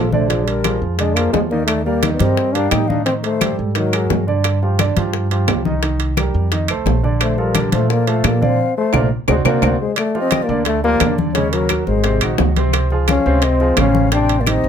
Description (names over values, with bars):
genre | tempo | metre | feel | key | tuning
Afro-Cuban jazz | 174 BPM | 4/4 | straight | unclear | A4 = 440 Hz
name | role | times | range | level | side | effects
mellow trombone | melody | 0.0-4.2, 7.2-14.7 s | F3 to Eb4 | -19 LUFS | left 3 dB | none
breathy mellow concert flute | second line | 0.0-4.2, 7.2-14.7 s | Ab4 to G5 | -25 LUFS | left 8 dB | none
warm grand piano | accompaniment | 0.0-14.7 s | C3 to Eb5 | -22 LUFS | right 4 dB | none
upright bass | bass | 0.0-14.7 s | Ab1 to Bb2 | -19 LUFS | right 1 dB | none
congas | percussion | 0.1-14.6 s | none | -23 LUFS | left 2 dB | none
bongos | percussion | 0.3-14.7 s | none | -25 LUFS | left 9 dB | none
timbales | percussion | 0.3-14.6 s | none | -24 LUFS | right 10 dB | none
claves | percussion | 0.6-14.6 s | none | -26 LUFS | left 9 dB | none
room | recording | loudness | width
light reverb | close, detailed microphones | -14 LUFS | side -8 dB against mid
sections
0.0-10.0 A section; 10.0-14.7 B section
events
drum fill 8.6-10.0; band accent 8.6-10.0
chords
0.3 Bb7; 1.7 Eb; 3.1 Am7b5; 3.8 Absus2; 4.5 G5; 5.8 Cm7; 6.5 F7; 7.2 Bbmaj9; 9.3 Daug7; 10.0 Gm7; 11.4 Ebm7; 12.0 Ab9; 12.7 Dbmaj9; 14.1 Am7b5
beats
| 0.30 0.65 1.00 1.34 | 1.69 2.03 2.38 2.72 | 3.07 3.41 3.76 4.11 | 4.45 4.80 5.14 5.49 | 5.83 6.18 6.52 6.87 | 7.21 7.56 7.90 8.25 | 8.59 8.94 9.29 9.63 | 9.97 10.32 10.67 11.01 | 11.36 11.70 12.05 12.39 | 12.74 13.08 13.43 13.77 | 14.12 14.46